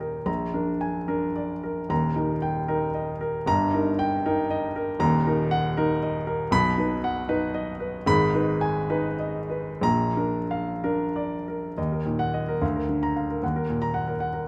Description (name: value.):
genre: classical, romantic character piece for solo piano.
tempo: 60-81 BPM (dotted quarters).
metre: 6/8.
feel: rubato.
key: Eb major, Eb minor from 5.0 s.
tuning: A4 = 440 Hz.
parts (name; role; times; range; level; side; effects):
warm grand piano; solo; 0.0-14.5 s; Eb1 to B5; -26 LUFS; equal; none.
room: moderate recital hall reverb, RT60 1.5 s.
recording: none.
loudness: -26 LUFS.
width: mono.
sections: 0.0-11.8 A section; 11.8-14.5 B section.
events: none.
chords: 0.3 Bb7; 1.9 Eb; 3.5 Eb/G; 5.0 Ebm; 6.5 B; 8.1 Abm; 9.8 Bb; 11.8 Ebm; 12.6 Bb/D; 13.4 Ebm.